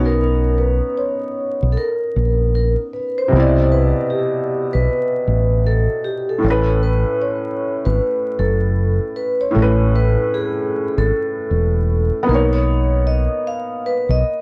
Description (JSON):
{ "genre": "lo-fi hip hop", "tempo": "77 BPM", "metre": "4/4", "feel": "swing 63% on 16ths", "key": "A major", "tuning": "A4 = 440 Hz", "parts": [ { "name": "vibraphone with soft mallets", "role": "melody", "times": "0.0-14.4 s", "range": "G4 to F5", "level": "-23 LUFS", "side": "equal", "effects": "none" }, { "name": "felt-muted upright piano", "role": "accompaniment", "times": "0.0-14.4 s", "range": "A2 to D5", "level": "-24 LUFS", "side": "equal", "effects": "none" }, { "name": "deep dub fingered electric bass", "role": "bass", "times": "0.0-14.2 s", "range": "E1 to C2", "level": "-19 LUFS", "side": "equal", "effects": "tube saturation" } ], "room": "light reverb", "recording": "worn, warbling old tape, cassette tape, vinyl crackle, warbly pitch drift", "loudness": "-18 LUFS", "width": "mono", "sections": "0.0-14.4 A section", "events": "none", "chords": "0.0 Bmaj9; 3.3 Cmaj9; 6.4 Aadd9; 12.3 Bmaj9" }